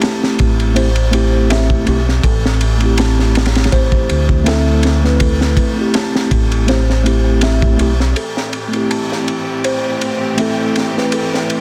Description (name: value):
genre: trip hop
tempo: 81 BPM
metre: 4/4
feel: swing 54% on 16ths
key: A minor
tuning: A4 = 440 Hz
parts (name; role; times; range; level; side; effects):
- mellow tine electric piano; accompaniment; 0.0-11.6 s; A3 to B4; -21 LUFS; equal; tremolo, low-pass filter, tape echo
- music box; arpeggios; 0.0-11.6 s; A4 to A5; -27 LUFS; equal; low-pass filter, delay
- crunchy breakbeat drum kit; drums; 0.0-11.6 s; kick drum, ride cymbal, snare drum; -20 LUFS; equal; high-pass filter on kick, high-pass filter on cymbals, high-pass filter on snare, high-pass filter on room
- deep dub fingered electric bass; bass; 0.4-8.1 s; A1 to D2; -17 LUFS; equal; none
- clear studio string section; sustained chords; 8.2-11.6 s; A2 to G4; -25 LUFS; equal; none
room: studio reverb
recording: dense, heavily limited modern master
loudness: -15 LUFS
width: mono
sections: 0.0-8.2 A section; 8.2-11.6 B section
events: filter sweep on music box 8.2-11.6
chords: 0.0 Am7